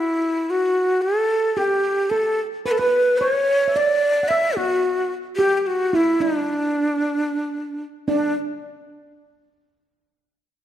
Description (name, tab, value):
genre	Persian modal ensemble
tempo	110 BPM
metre	3/4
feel	straight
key	D dastgah mahur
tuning	A4 = 440 Hz
part	breathy ney	melody	0.0-8.3 s	D4 to E5	-19 LUFS	equal	none
part	steel pan	second line	1.6-8.3 s	D4 to F#5	-25 LUFS	right 3 dB	none
room	moderate scoring stage reverb, RT60 1.8 s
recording	dark, warm production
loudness	-18 LUFS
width	side -11 dB against mid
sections	0.0-8.1 A section; 8.1-9.7 B section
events	none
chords	none